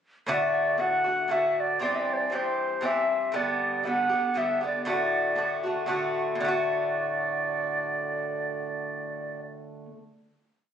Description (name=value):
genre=celtic folk, Celtic waltz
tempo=118 BPM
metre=3/4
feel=swing 54% on 8ths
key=D mixolydian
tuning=A4 = 440 Hz
part: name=mellow wooden flute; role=melody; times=0.3-9.4 s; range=C5 to F#5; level=-27 LUFS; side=equal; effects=none
part: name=Irish bouzouki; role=accompaniment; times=0.3-10.0 s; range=G2 to G4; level=-28 LUFS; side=left 1 dB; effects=none
room=moderate studio reverb, RT60 0.5 s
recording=recorded on a phone in the room, club reverb, compression, nothing above 10.4 kHz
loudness=-25 LUFS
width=side -8 dB against mid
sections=0.3-6.4 A section; 6.4-9.5 final chord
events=none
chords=0.3 D; 1.8 C; 3.3 G; 4.9 D